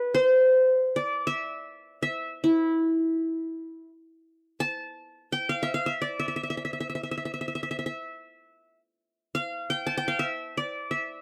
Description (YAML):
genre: Turkish makam ensemble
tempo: free time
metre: none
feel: none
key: E makam kurdi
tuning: A4 = 436 Hz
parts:
  - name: qanun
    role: solo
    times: 0.0-11.2 s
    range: E4 to A5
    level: -27 LUFS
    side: equal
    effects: none
room: light reverb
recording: dry, close 1970s-style studio recording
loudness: -27 LUFS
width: mono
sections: 0.0-4.1 A section; 4.1-11.2 A section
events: none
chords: none